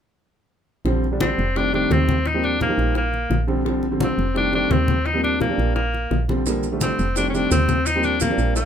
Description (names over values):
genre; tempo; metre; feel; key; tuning
Afro-Cuban jazz; 172 BPM; 4/4; straight; Bb major; A4 = 440 Hz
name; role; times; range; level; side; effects
woody FM bass; bass; 0.8-8.7 s; F1 to Eb2; -23 LUFS; right 1 dB; none
warm grand piano; accompaniment; 0.9-8.6 s; D3 to Eb4; -23 LUFS; right 1 dB; none
bongos; percussion; 0.9-8.7 s; none; -30 LUFS; left 5 dB; none
congas; percussion; 0.9-8.7 s; none; -27 LUFS; left 2 dB; none
bright tenor saxophone; melody; 1.2-8.7 s; Bb3 to Eb4; -23 LUFS; left 2 dB; none
maracas; percussion; 6.5-8.7 s; none; -30 LUFS; right 8 dB; none
room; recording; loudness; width
moderate studio ambience, RT60 0.4 s; minimal, uncompressed stereo recording; -18 LUFS; side -8 dB against mid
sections
0.9-8.7 A section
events
none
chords
0.9 Bb69; 1.6 F7; 2.3 Eb69; 3.0 Bb69; 4.4 F7; 5.1 Eb69; 5.8 Bb69; 7.2 F7; 7.9 Eb69